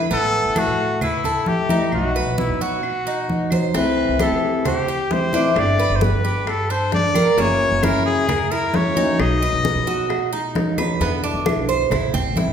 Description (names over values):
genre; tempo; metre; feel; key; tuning
latin, Cuban son and guajira; 132 BPM; 4/4; straight; unclear; A4 = 439 Hz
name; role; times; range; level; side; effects
flamenco guitar; accompaniment; 0.0-12.5 s; B2 to G4; -24 LUFS; left 4 dB; none
Cuban tres; arpeggios; 0.0-12.5 s; A#3 to C5; -24 LUFS; right 5 dB; none
bright trumpet; melody; 0.1-10.6 s; E4 to D#5; -22 LUFS; left 2 dB; none
upright bass; bass; 0.1-12.5 s; F#1 to C3; -26 LUFS; equal; none
congas; percussion; 0.1-12.5 s; none; -25 LUFS; right 1 dB; none
claves; percussion; 0.6-12.1 s; none; -35 LUFS; right 1 dB; none
bongos; percussion; 3.7-12.5 s; none; -29 LUFS; left 4 dB; none
room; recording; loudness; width
wet recital hall reverb, RT60 1.4 s; recorded in a church or concert hall; -17 LUFS; side -8 dB against mid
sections
0.0-11.0 A section; 11.0-12.5 B section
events
drum fill 10.8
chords
0.1 Asus2; 1.9 B; 3.7 C6; 5.6 G; 7.4 F#7; 9.2 B; 11.0 Em7; 11.9 Am7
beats
| 0.11 0.56 1.02 1.47 | 1.93 2.38 2.84 3.29 | 3.75 4.20 4.66 5.11 | 5.56 6.02 6.47 6.92 | 7.38 7.83 8.29 8.74 | 9.19 9.65 10.10 10.55 | 11.01 11.46 11.92 12.37